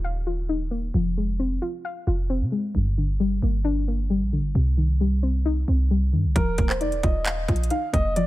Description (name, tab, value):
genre	hip hop, trap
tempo	133 BPM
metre	4/4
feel	half-time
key	Eb major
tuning	A4 = 440 Hz
part	soft round pluck	accompaniment	0.0-8.3 s	G2 to F5	-26 LUFS	left 3 dB	chorus
part	clean 808-style bass	bass	0.0-8.3 s	Eb1 to C3	-23 LUFS	equal	none
part	dark grand piano	melody	6.4-8.3 s	Bb4 to F5	-27 LUFS	right 2 dB	none
part	trap drum kit	drums	6.4-8.3 s	handclaps, hi-hat, kick drum	-24 LUFS	equal	none
room	digital ambience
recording	none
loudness	-21 LUFS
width	side -16 dB against mid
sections	0.0-8.3 A section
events	break 0.0-6.4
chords	0.0 Ebsus2; 0.9 Fm; 2.7 Gm; 4.6 Cm; 6.4 Ebsus2